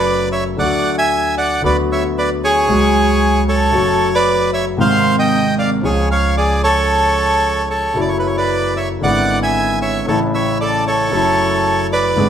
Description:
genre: tango.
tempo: 114 BPM.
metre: 4/4.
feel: rubato.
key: F# minor.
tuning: A4 = 440 Hz.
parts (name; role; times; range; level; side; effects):
bandoneon; melody; 0.0-12.3 s; G#4 to G#5; -15 LUFS; right 2 dB; none.
warm concert grand piano; accompaniment; 0.0-12.3 s; G#1 to G#4; -18 LUFS; left 1 dB; none.
upright bass; bass; 0.0-12.3 s; F#1 to D2; -24 LUFS; equal; none.
room: moderate large studio reverb, RT60 0.8 s.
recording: band playing live in one room.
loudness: -13 LUFS.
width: side -8 dB against mid.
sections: 0.0-12.3 A section.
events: none.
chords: 0.0 F#m; 0.6 D; 1.6 Bm/D; 2.7 C#sus4; 3.7 F#m; 4.8 G#; 5.8 C#; 8.0 F#m7; 9.0 E7/G#; 10.1 A; 11.1 F#m7.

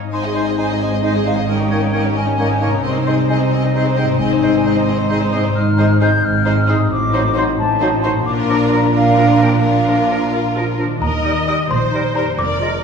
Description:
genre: cinematic, playful, whimsical film cue.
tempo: 88 BPM (dotted quarters).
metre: 6/8.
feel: straight.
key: Ab major, Eb major from 5.6 s.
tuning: A4 = 440 Hz.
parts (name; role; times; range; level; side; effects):
rich studio violin section; melody; 0.0-12.3 s; G4 to Ab5; -26 LUFS; left 4 dB; none.
rich studio violin section; second line; 0.0-12.8 s; F4 to Eb5; -27 LUFS; left 2 dB; none.
concert harp; arpeggios; 0.0-12.8 s; F2 to Bb4; -23 LUFS; left 6 dB; none.
mellow concert flute; second line; 0.1-10.3 s; Eb5 to G6; -21 LUFS; left 1 dB; none.
warm studio viola section; accompaniment; 0.1-12.8 s; C4 to Eb5; -24 LUFS; right 1 dB; none.
warm French horn section; sustained chords; 0.1-10.7 s; Bb3 to Eb4; -22 LUFS; equal; none.
warm studio cello section; bass; 0.1-12.8 s; Eb2 to C3; -24 LUFS; right 3 dB; none.
warm studio double bass section; bass; 0.1-12.8 s; F1 to Eb2; -21 LUFS; right 3 dB; none.
clear clarinet; second line; 0.3-12.7 s; D4 to F4; -26 LUFS; left 2 dB; none.
mellow bassoon; accompaniment; 0.3-12.7 s; F3 to Bb3; -26 LUFS; right 1 dB; none.
clear oboe; second line; 0.4-12.7 s; Bb4 to Db5; -29 LUFS; right 1 dB; none.
trough xylophone with soft rubber mallets; melody; 11.0-12.8 s; Bb5 to Eb6; -24 LUFS; left 3 dB; none.
room: wet scoring stage reverb, RT60 1.7 s.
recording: heard from further back in the room.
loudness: -14 LUFS.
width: side -6 dB against mid.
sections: 0.1-11.0 A section; 11.0-12.8 B section.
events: none.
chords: 0.1 Ab; 1.5 Eb7/Ab; 2.8 Ab/C; 4.2 Ab; 6.9 Adim7; 8.3 Bb; 11.0 Eb.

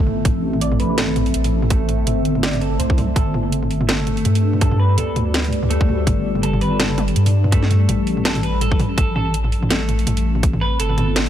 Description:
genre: half-time drum and bass.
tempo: 165 BPM.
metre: 4/4.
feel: swing 56% on 16ths, half-time.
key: A minor.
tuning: A4 = 440 Hz.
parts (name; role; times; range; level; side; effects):
deep dark ambient pad; sustained chords; 0.0-11.3 s; G3 to E5; -24 LUFS; left 1 dB; chorus, built-in reverb, sidechain pumping.
twelve-string electric guitar; arpeggios; 0.0-11.2 s; A3 to D5; -26 LUFS; equal; low-pass filter, digital delay.
deep soft wobble bass; bass; 0.0-11.3 s; G1 to G2; -19 LUFS; equal; chorus.
drum and bass drum kit; drums; 0.1-11.3 s; hi-hat, snare drum, toms; -23 LUFS; right 1 dB; overdrive.
electronic kick drum; drums; 0.2-10.5 s; none; -17 LUFS; equal; overdrive.
room: little or no reverb.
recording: none.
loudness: -16 LUFS.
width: side -10 dB against mid.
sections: 0.0-11.3 A section.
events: filter sweep on clean electric guitar 0.0-11.3.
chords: 0.0 Am; 3.2 G; 9.0 Am.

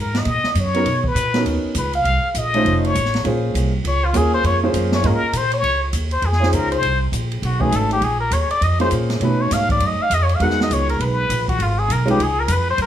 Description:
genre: jazz, small-group swing and bop.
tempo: 201 BPM.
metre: 4/4.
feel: swing 62% on 8ths.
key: Bb minor, Db major from 5.6 s.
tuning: A4 = 440 Hz.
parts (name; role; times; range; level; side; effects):
trumpet with plunger mute; melody; 0.0-12.9 s; F4 to F#5; -20 LUFS; left 2 dB; plate reverb.
upright bass; bass; 0.0-12.9 s; F1 to B2; -20 LUFS; equal; none.
open jazz drum kit; drums; 0.1-12.9 s; hi-hat, kick drum, ride cymbal, snare drum; -26 LUFS; right 1 dB; none.
warm baby grand piano; accompaniment; 0.7-12.2 s; G#3 to Eb5; -21 LUFS; right 2 dB; none.
room: light reverb.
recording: small room ambience.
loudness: -16 LUFS.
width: side -10 dB against mid.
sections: 0.0-5.6 A section; 5.6-12.9 A section.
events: muted trumpet solo 0.0-12.9.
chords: 0.0 Gbadd9; 0.9 Bmaj7; 2.1 Bbsus24; 2.7 F7b13; 3.2 Bbm9; 5.6 Dbmaj7; 6.8 Bbsus2; 7.4 Cb9; 8.0 Bbm9; 9.2 Cb7; 10.4 Emaj9#11; 11.6 Abm; 12.2 Db.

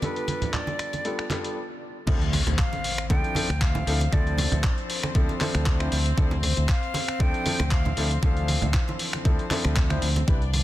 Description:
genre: nu-disco, nu disco.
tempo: 117 BPM.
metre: 4/4.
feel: swing 54% on 16ths.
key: D dorian.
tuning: A4 = 440 Hz.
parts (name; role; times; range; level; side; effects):
silver concert flute; melody; 0.0-9.0 s; B4 to G5; -33 LUFS; equal; digital delay.
warm grand piano; accompaniment; 0.0-10.4 s; E3 to C5; -32 LUFS; left 1 dB; sidechain pumping, digital delay.
bright chamber string section; sustained chords; 0.0-10.6 s; C4 to D5; -37 LUFS; left 1 dB; vintage 12-bit sampler grit, sidechain pumping.
dusty soul sampler-style drum kit; drums; 0.0-10.6 s; crash cymbal, finger snaps, handclaps, hi-hat; -31 LUFS; left 1 dB; low-pass filter on hats, studio reverb, soft clipping on snare, low-pass filter on snare, low-pass filter on cymbals.
congas; percussion; 0.0-10.6 s; none; -32 LUFS; right 2 dB; none.
fingered electric bass with an envelope filter; bass; 2.1-10.6 s; C2 to D2; -25 LUFS; equal; none.
electronic kick drum; drums; 2.1-10.4 s; none; -23 LUFS; equal; studio reverb.
impact; sound effects; 2.1-4.1 s; none; -33 LUFS; equal; none.
room: studio ambience.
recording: dense, heavily limited modern master.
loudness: -22 LUFS.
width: side -15 dB against mid.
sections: 0.0-2.1 A section; 2.1-10.6 B section.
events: filter sweep on string section 0.0-2.1; stop 1.6-2.1; drop 2.1-10.6; impact 2.1-4.1.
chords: 0.0 G7; 2.1 Dm7.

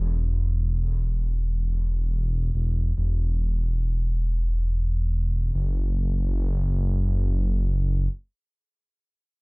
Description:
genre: trip hop.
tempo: free time.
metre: none.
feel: none.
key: unclear.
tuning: A4 = 440 Hz.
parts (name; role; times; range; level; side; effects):
dark detuned saw bass; bass; 0.0-8.1 s; E1 to F#1; -22 LUFS; equal; none.
room: small room ambience.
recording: dark, warm production.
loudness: -22 LUFS.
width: side -35 dB against mid.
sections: 0.0-5.5 A section; 5.5-9.0 B section.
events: filter sweep on detuned saw bass 0.0-5.5.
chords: none.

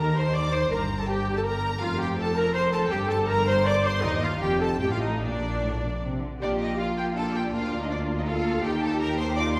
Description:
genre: quick classical-period movement for string orchestra.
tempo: 161 BPM.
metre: 3/4.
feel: rubato.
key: Bb major.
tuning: A4 = 439 Hz.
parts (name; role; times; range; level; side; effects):
rich symphonic violin section; melody; 0.0-9.6 s; D5 to D6; -37 LUFS; equal; none.
clear studio violin section; second line; 0.0-9.6 s; D4 to D6; -36 LUFS; equal; none.
clear symphonic viola section; accompaniment; 0.0-9.6 s; Bb3 to D5; -30 LUFS; equal; none.
rich symphonic cello section; bass; 0.0-9.6 s; Eb2 to A4; -32 LUFS; equal; none.
rich symphonic double bass section; bass; 0.0-9.6 s; F1 to Eb2; -33 LUFS; equal; none.
room: wet scoring stage reverb, RT60 1.9 s.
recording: heard from further back in the room.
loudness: -26 LUFS.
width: mono.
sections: 0.0-6.4 A section; 6.4-9.6 B section.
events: none.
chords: 0.0 Cm9/Eb; 0.7 Gmadd9; 1.8 Fadd9; 2.9 Gmadd11; 4.0 Ebsus2; 4.4 Fadd9; 4.8 F9/A; 5.2 Bb; 7.5 Bb/D; 8.6 Eb.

